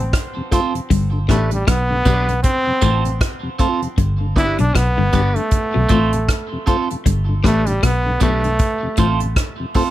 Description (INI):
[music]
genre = roots reggae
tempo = 78 BPM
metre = 4/4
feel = swing 59% on 16ths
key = G mixolydian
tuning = A4 = 439 Hz
[part]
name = brilliant trombone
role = melody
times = 0.0-9.3 s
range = G3 to E4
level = -22 LUFS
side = right 1 dB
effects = tape echo
[part]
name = mellow tonewheel organ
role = accompaniment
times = 0.0-9.8 s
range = F2 to G4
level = -27 LUFS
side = left 3 dB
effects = overdrive, chorus vibrato, slow rotary speaker
[part]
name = vintage muted fingered electric bass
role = bass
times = 0.0-9.3 s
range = G1 to B1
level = -19 LUFS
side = equal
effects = none
[part]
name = soft brush drum kit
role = drums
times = 0.1-9.9 s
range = hi-hat, kick drum, rim click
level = -18 LUFS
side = equal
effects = none
[part]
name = electric guitar at the edge of break-up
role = accompaniment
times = 0.5-9.9 s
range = B3 to C5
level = -24 LUFS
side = right 5 dB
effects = phaser, tape echo
[part]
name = electric guitar at the edge of break-up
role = riff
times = 0.9-9.2 s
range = G2 to B2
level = -23 LUFS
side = left 6 dB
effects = lush chorus
[sound]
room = light reverb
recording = none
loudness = -15 LUFS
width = side -14 dB against mid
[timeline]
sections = 0.0-9.9 A section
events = none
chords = 0.0 F; 0.9 G; 2.4 F; 4.0 G; 5.5 F; 7.1 G; 8.6 F